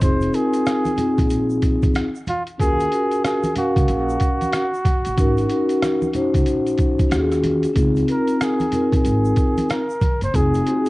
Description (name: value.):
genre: hip hop, jazz-hop.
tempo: 93 BPM.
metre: 4/4.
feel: swing 62% on 16ths.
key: unclear.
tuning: A4 = 444 Hz.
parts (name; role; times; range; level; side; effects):
breathy flugelhorn; melody; 0.0-10.9 s; F4 to C5; -24 LUFS; equal; cassette tape, analog delay.
vibraphone with soft mallets; accompaniment; 0.0-10.9 s; C4 to F5; -20 LUFS; left 1 dB; none.
upright bass; bass; 0.0-10.6 s; F1 to Eb2; -24 LUFS; equal; none.
trip hop sampler-style drum kit; drums; 0.0-10.9 s; hi-hat, kick drum, rim click; -21 LUFS; equal; cassette tape.
tube shaker and congas; percussion; 0.0-10.9 s; none; -31 LUFS; right 2 dB; none.
room: studio ambience.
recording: home recording on cassette, nothing above 10.9 kHz, faint mains hum.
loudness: -17 LUFS.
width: side -20 dB against mid.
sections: 0.0-7.8 A section; 7.8-10.9 A section.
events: none.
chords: 0.0 Fm7; 2.6 Ebm9 (rootless); 5.2 Ab9sus4; 7.1 Ebm11; 7.8 Dbmaj9 (rootless); 10.3 Fm7.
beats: | 0.02 0.66 1.31 1.95 | 2.60 3.24 3.89 4.53 | 5.18 5.82 6.47 7.11 | 7.76 8.40 9.05 9.70 | 10.34.